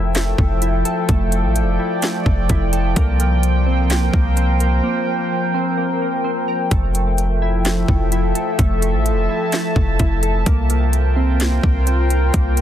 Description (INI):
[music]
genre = hip hop, atmospheric cloud-rap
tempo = 128 BPM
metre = 4/4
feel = half-time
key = F major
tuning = A4 = 440 Hz
[part]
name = warbly tape-like pad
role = sustained chords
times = 0.0-12.6 s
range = F3 to A5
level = -21 LUFS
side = left 1 dB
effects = chorus, built-in reverb, sidechain pumping
[part]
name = glassy digital keys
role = arpeggios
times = 0.0-12.6 s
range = A3 to Bb4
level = -26 LUFS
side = right 2 dB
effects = chorus, digital delay
[part]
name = warm 808-style bass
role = bass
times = 0.0-12.6 s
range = F1 to C2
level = -18 LUFS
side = equal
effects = none
[part]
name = trap drum kit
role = drums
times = 0.1-12.6 s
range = hi-hat, kick drum, snare drum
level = -19 LUFS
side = equal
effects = none
[sound]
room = digital ambience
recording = dense, heavily limited modern master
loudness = -15 LUFS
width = side -11 dB against mid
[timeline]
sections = 0.0-12.6 A section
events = break 4.8-6.7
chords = 0.0 Fmaj9; 3.0 C7sus4; 6.7 Fmaj9; 10.5 C7sus4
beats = 0.15 0.62 | 1.09 1.56 2.03 2.50 | 2.96 3.43 3.90 4.37 | 4.84 5.31 5.78 6.25 | 6.71 7.18 7.65 8.12 | 8.59 9.06 9.53 9.99 | 10.46 10.93 11.40 11.87 | 12.34